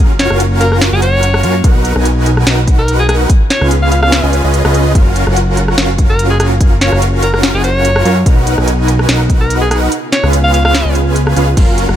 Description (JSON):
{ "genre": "future bass", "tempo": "145 BPM", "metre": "4/4", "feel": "swing 54% on 16ths, half-time", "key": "F# major", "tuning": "A4 = 440 Hz", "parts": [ { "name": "airy breathy pad", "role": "sustained chords", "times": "0.0-4.9, 8.3-12.0 s", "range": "B2 to E#4", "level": "-22 LUFS", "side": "equal", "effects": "chorus, sidechain pumping" }, { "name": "supersaw chords", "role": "riff", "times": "0.0-12.0 s", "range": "C#4 to G#5", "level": "-16 LUFS", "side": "right 1 dB", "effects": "wide subtle chorus, sidechain pumping" }, { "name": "fat analog bass", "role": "bass", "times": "0.0-12.0 s", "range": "F#1 to F#2", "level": "-13 LUFS", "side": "equal", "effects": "sidechain pumping" }, { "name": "edgy alto saxophone", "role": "melody", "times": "0.2-11.0 s", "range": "G#4 to E#5", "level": "-17 LUFS", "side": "equal", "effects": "sidechain pumping, ping-pong delay" }, { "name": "trap drum kit", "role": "drums", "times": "0.2-12.0 s", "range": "crash cymbal, hi-hat, rim click, snare drum", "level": "-17 LUFS", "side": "equal", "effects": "studio reverb" }, { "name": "electronic kick drum", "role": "drums", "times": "1.6-11.7 s", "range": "none", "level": "-10 LUFS", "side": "equal", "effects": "studio reverb" } ], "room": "digital ambience", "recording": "none", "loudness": "-9 LUFS", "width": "side -11 dB against mid", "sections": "0.0-12.0 A section", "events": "kick drops out 9.9-11.6", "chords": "0.0 F#maj7; 1.6 Bmaj7; 3.3 C#7; 5.0 F#maj7; 8.3 Bmaj7; 9.9 C#7", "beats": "0.40 0.81 1.23 | 1.64 2.06 2.47 2.88 | 3.30 3.71 4.12 4.54 | 4.95 5.37 5.78 6.19 | 6.61 7.02 7.43 7.85 | 8.26 8.68 9.09 9.50 | 9.92 10.33 10.75 11.16 | 11.57" }